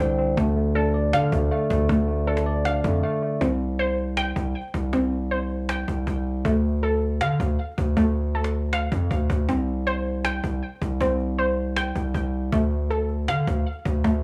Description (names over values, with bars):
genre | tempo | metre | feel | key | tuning
hip hop, trap | 158 BPM | 4/4 | half-time | D minor | A4 = 438 Hz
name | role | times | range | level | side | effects
tine electric piano | accompaniment | 0.0-3.4 s | D3 to D5 | -27 LUFS | equal | low-pass filter
warbly dusty pluck | arpeggios | 0.0-14.2 s | A3 to G5 | -28 LUFS | equal | chorus, low-pass filter, digital delay
distorted 808-style bass | bass | 0.0-14.2 s | C2 to D3 | -27 LUFS | equal | distortion
cajon | drums | 0.4-14.1 s | none | -35 LUFS | equal | none
room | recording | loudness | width
light reverb | small room ambience | -24 LUFS | mono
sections
0.0-3.4 A section; 3.4-14.2 B section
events
break 3.0-3.4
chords
0.4 Dm; 3.4 C5; 6.4 Dm; 9.5 C5; 12.5 Dm